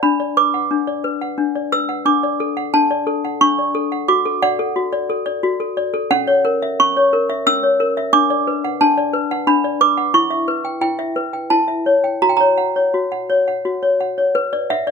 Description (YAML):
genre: classical, lullaby for toy piano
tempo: 89 BPM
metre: 3/4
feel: rubato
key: B minor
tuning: A4 = 440 Hz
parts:
  - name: toy piano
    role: solo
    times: 0.0-14.9 s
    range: C#4 to E6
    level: -15 LUFS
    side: equal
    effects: none
room: moderate studio ambience, RT60 0.5 s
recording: none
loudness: -15 LUFS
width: side -6 dB against mid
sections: 0.0-14.4 A section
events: none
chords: 0.0 Bm/D; 2.1 D; 4.1 D/F#; 6.1 F#7/C#; 8.1 Bm/D; 10.1 Em; 11.5 C#dim/E; 12.2 F#; 14.4 Bm